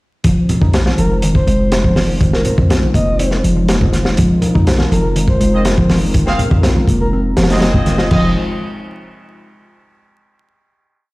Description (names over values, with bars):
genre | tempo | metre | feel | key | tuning
breakbeat, breaks | 122 BPM | 4/4 | straight | F minor | A4 = 440 Hz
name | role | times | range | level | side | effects
dark analog pad | sustained chords | 0.2-8.3 s | Ab3 to C5 | -22 LUFS | left 1 dB | chorus, sidechain pumping
hollow-body short-scale picked electric bass | riff | 0.2-8.3 s | Eb3 to Eb4 | -18 LUFS | equal | none
warm 808-style bass | bass | 0.2-8.3 s | F1 to F2 | -17 LUFS | equal | tube saturation
crunchy breakbeat drum kit | drums | 0.2-8.2 s | crash cymbal, hi-hat, kick drum, snare drum | -16 LUFS | equal | none
congas | percussion | 0.5-8.0 s | none | -22 LUFS | right 1 dB | none
breathy flute-like synth lead | melody | 1.0-7.2 s | Bb4 to Eb5 | -22 LUFS | equal | chorus, old record sound, tape echo
clear horn section | stabs | 5.5-8.3 s | C4 to F5 | -22 LUFS | right 1 dB | tape echo
room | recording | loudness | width
studio reverb | played on a big sound system in a bare room, large studio reverb, vinyl crackle | -11 LUFS | side -21 dB against mid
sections
0.2-8.1 drop; 8.1-10.1 final chord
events
drop 0.2-8.1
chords
0.2 Fm7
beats
| 0.24 0.74 1.23 1.72 | 2.21 2.70 3.20 3.69 | 4.18 4.67 5.16 5.66 | 6.15 6.64 7.13 7.62 | 8.11